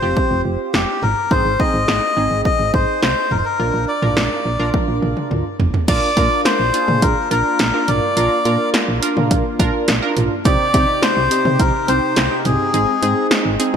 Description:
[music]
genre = synth-pop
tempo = 105 BPM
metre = 4/4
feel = straight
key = unclear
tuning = A4 = 440 Hz
[part]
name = melodica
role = melody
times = 0.0-13.3 s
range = G4 to Eb5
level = -19 LUFS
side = left 2 dB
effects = ping-pong delay
[part]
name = funky polysynth comp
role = accompaniment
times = 0.0-13.8 s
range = C4 to Bb4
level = -22 LUFS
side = right 2 dB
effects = chorus
[part]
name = solid FM bass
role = bass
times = 0.0-13.8 s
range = F1 to C3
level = -21 LUFS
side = equal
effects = none
[part]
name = punchy analog drum machine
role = drums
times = 0.2-13.8 s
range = crash cymbal, hi-hat, kick drum, snare drum, toms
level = -19 LUFS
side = equal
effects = gated reverb
[part]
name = brassy analog pad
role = sustained chords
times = 5.9-13.8 s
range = C3 to G4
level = -26 LUFS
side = left 1 dB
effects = chorus, tremolo
[sound]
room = moderate lush hall reverb, RT60 2.7 s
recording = bright 1980s-style digital production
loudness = -14 LUFS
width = side -7 dB against mid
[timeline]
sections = 0.0-5.9 A section; 5.9-13.8 B section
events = drum fill 4.7-5.9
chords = 0.0 Fsus2; 1.3 Ab; 3.6 Bb; 10.5 Cm; 12.7 Ab

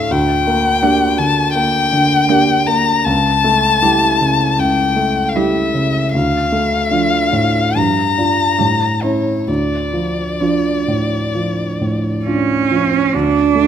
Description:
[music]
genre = classical, slow romantic movement for piano quartet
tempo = 64-85 BPM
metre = 4/4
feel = rubato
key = D minor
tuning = A4 = 436 Hz
[part]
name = warm violin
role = melody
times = 0.0-12.3 s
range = C#5 to Bb5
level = -16 LUFS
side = left 5 dB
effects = none
[part]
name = dark grand piano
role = accompaniment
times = 0.0-13.7 s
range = C#2 to A4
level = -16 LUFS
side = right 1 dB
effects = none
[part]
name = rich cello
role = second line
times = 0.8-13.7 s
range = F3 to D4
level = -18 LUFS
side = right 7 dB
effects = none
[sound]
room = moderate recital hall reverb, RT60 1.6 s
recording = none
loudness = -13 LUFS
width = side -9 dB against mid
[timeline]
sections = 0.0-13.1 A section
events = none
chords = 0.1 Gm/D; 3.1 A7/C#; 6.1 Dm; 7.8 Gm7; 8.6 A7b9; 9.5 Dm; 13.1 D5

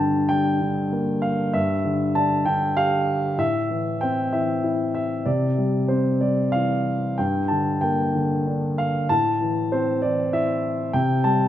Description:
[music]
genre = classical, lyrical solo piano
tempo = 64 BPM (dotted quarters)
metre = 6/8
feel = rubato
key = G dorian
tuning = A4 = 440 Hz
[part]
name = dark baby grand piano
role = solo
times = 0.0-11.5 s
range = G2 to A5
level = -20 LUFS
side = equal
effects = none
[sound]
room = moderate scoring stage reverb, RT60 1.4 s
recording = minimal, uncompressed stereo recording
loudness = -20 LUFS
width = side -11 dB against mid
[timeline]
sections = 0.0-11.5 A section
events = none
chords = 0.0 Gm; 1.6 Fmaj13/G; 3.4 Am; 5.3 Cadd9; 7.2 Gm; 9.1 Am; 11.0 C5

